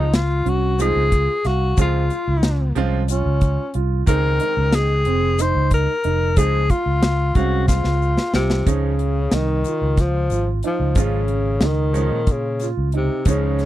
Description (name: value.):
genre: progressive instrumental, band music in an uneven meter.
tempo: 183 BPM (eighths).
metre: 7/8.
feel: straight.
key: Db major.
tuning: A4 = 440 Hz.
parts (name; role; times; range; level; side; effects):
breathy tenor saxophone; melody; 0.0-13.7 s; C3 to C5; -22 LUFS; left 3 dB; none.
bright baby grand piano; accompaniment; 0.0-13.7 s; Eb3 to F5; -28 LUFS; right 7 dB; none.
dark baby grand piano; arpeggios; 0.0-13.7 s; C4 to F5; -28 LUFS; right 19 dB; none.
fingered electric bass; bass; 0.0-13.7 s; F1 to Bb2; -20 LUFS; equal; none.
deep reggae drum kit; drums; 0.1-13.7 s; hi-hat, kick drum, snare drum; -18 LUFS; equal; none.
tube shaker; percussion; 0.1-13.6 s; none; -37 LUFS; left 25 dB; none.
room: little or no reverb.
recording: dry, close 1970s-style studio recording.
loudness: -17 LUFS.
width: side -14 dB against mid.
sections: 0.0-8.7 A section; 8.7-13.7 B section.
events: drum fill 7.7-8.7.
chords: 0.0 Dbmaj7; 4.1 Ab; 6.4 Dbmaj7; 8.7 Dbadd9.